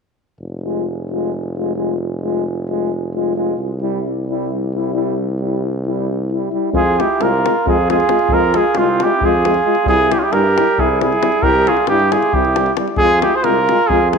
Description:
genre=balkan folk, Balkan brass band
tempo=268 BPM (eighths)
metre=7/8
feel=straight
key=F harmonic minor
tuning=A4 = 440 Hz
part: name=warm tuba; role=bass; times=0.4-14.2 s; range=F1 to G2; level=-22 LUFS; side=equal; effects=transformer saturation
part: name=bright trombone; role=accompaniment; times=0.6-14.2 s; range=G3 to Ab3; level=-25 LUFS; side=right 9 dB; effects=none
part: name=mellow euphonium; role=accompaniment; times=0.6-14.2 s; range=E4 to F4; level=-21 LUFS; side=left 8 dB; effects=none
part: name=davul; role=percussion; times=6.7-14.2 s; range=none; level=-23 LUFS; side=left 4 dB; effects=none
part: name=warm trumpet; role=melody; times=6.8-14.2 s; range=F4 to C5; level=-16 LUFS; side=right 1 dB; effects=none
part: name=warm flugelhorn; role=second line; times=6.8-14.2 s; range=C4 to Ab4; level=-20 LUFS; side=right 8 dB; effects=none
room=wet echo chamber reverb, RT60 1.6 s, small room ambience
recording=1960s-style stereo with parts hard left and right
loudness=-14 LUFS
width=side -5 dB against mid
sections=0.4-6.7 A section; 6.7-14.2 B section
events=none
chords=0.4 Fm; 3.6 C; 6.7 Fm; 9.9 C; 13.0 Fm

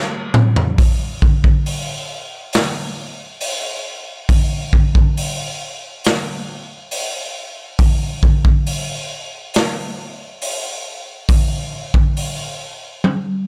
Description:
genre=metal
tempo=69 BPM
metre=4/4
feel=straight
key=none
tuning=none
part: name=raw garage drum kit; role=drums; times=0.3-13.2 s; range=hi-hat, kick drum, snare drum, toms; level=-19 LUFS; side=equal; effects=none
room=little or no reverb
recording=none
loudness=-18 LUFS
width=mono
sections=0.8-13.5 A section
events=drum fill 0.0-0.8, 13.0-13.5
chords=none

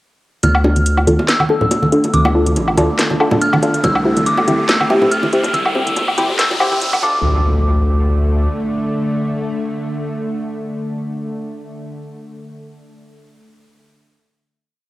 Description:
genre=deep dubstep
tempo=141 BPM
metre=4/4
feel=swing 54% on 16ths, half-time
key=D minor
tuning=A4 = 440 Hz
part: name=dark detuned synth bell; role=melody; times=0.4-11.8 s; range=D6 to F6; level=-21 LUFS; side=equal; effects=chorus, cassette tape, dub echo
part: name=bowed-like drone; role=sustained chords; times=1.7-11.5 s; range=D3 to A3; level=-24 LUFS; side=equal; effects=built-in reverb, cassette tape
part: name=saturated sub bass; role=bass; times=0.4-8.5 s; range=G1 to D2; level=-17 LUFS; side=equal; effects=none
part: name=garage drum kit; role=drums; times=0.4-7.0 s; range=hi-hat, snare drum, woodblock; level=-19 LUFS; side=equal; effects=high-pass filter on hats, studio reverb, high-pass filter on perc, high-pass filter on snare
part: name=bongos and congas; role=percussion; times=0.4-7.1 s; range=none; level=-20 LUFS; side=right 1 dB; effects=none
part: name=riser and impact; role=sound effects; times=1.9-11.9 s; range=none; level=-26 LUFS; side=equal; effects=none
part: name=filtered dub chord stab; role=stabs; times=0.6-11.8 s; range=C4 to A4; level=-18 LUFS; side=left 1 dB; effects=wide subtle chorus, cassette tape, dub echo
part: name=electronic kick drum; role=drums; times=3.8-7.1 s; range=none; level=-27 LUFS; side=equal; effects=studio reverb
room=moderate spring reverb, RT60 1.6 s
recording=home recording on cassette, high-pass filter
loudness=-14 LUFS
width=side -17 dB against mid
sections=0.4-7.2 build; 7.2-10.6 final hit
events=build-up 0.4-7.2; filter sweep on synth stab 0.4-7.2; filter sweep on synth drone 0.4-7.2; filter sweep 0.4-7.2; riser 1.9-7.2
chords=0.4 Dm; 3.8 C; 7.0 Dm

